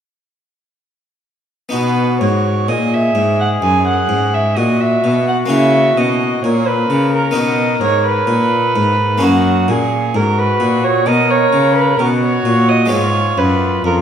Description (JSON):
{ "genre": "classical, baroque-style sonata movement with continuo", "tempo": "65 BPM", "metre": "4/4", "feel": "rubato", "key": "B major", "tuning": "A4 = 440 Hz", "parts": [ { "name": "warm trumpet", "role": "melody", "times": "1.7-14.0 s", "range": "F4 to A#4", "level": "-20 LUFS", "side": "left 6 dB", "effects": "none" }, { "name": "dark violin", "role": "second line", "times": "1.7-13.9 s", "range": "F#4 to G#5", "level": "-16 LUFS", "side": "right 4 dB", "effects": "none" }, { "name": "harpsichord", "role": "accompaniment", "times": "1.7-14.0 s", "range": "F2 to F#4", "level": "-18 LUFS", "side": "left 2 dB", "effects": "none" }, { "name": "rich cello", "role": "bass", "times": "1.7-14.0 s", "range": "F2 to C#3", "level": "-18 LUFS", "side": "right 1 dB", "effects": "none" } ], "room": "wet recital hall reverb, RT60 1.4 s", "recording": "none", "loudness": "-12 LUFS", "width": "side -8 dB against mid", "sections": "1.7-14.0 A section", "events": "none", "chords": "1.7 B; 5.5 A#dim; 7.4 B; 9.2 F#; 12.9 Fdim", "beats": "| 1.74 2.69 3.63 4.58 | 5.51 6.45 7.37 8.30 | 9.23 10.16 11.08 12.01 | 12.94 13.86" }